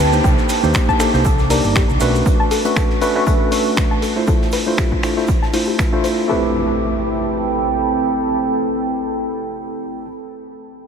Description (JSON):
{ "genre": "deep house", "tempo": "119 BPM", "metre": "4/4", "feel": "swing 56% on 16ths", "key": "A minor", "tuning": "A4 = 439 Hz", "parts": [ { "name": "deep dark ambient pad", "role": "sustained chords", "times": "0.0-10.1 s", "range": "C4 to D6", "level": "-23 LUFS", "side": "right 2 dB", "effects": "chorus, built-in reverb, sidechain pumping" }, { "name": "soft round pluck", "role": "arpeggios", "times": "0.0-6.5 s", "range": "E4 to A5", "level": "-25 LUFS", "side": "left 4 dB", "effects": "chorus, sidechain pumping, analog delay" }, { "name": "tine electric piano", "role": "stabs", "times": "0.0-10.1 s", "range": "A3 to D5", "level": "-20 LUFS", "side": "equal", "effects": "medium stereo tremolo, sidechain pumping, low-pass filter, analog delay" }, { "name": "hollow-body short-scale fingered electric bass", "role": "bass", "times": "0.0-2.2 s", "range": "G1 to Eb2", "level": "-19 LUFS", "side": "equal", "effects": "sidechain pumping" }, { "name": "downlifter and impact", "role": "sound effects", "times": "0.0-2.3, 6.3-10.1 s", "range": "none", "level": "-29 LUFS", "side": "equal", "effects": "none" }, { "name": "maracas", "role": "percussion", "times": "0.1-2.2 s", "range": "none", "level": "-32 LUFS", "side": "right 6 dB", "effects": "none" }, { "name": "electronic kick drum", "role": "drums", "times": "0.2-5.9 s", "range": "none", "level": "-18 LUFS", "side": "equal", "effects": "none" }, { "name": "crisp fusion drum kit", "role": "drums", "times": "0.3-6.2 s", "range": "hi-hat, shaker, snare drum", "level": "-35 LUFS", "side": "right 3 dB", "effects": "none" }, { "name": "dusty soul sampler-style drum kit", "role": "drums", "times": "0.5-6.2 s", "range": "finger snaps, hi-hat", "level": "-25 LUFS", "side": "equal", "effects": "none" } ], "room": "moderate huge ambient reverb, RT60 5.0 s", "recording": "dreamy mix soaked in reverb", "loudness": "-15 LUFS", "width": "side -7 dB against mid", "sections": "0.0-6.3 A section; 6.3-10.3 B section", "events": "filter sweep on tine electric piano 0.0-6.3; filter sweep on synth arpeggio sound 0.0-6.3", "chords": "0.2 Cm9; 2.0 Bm9; 4.3 Dm9; 6.3 Am9" }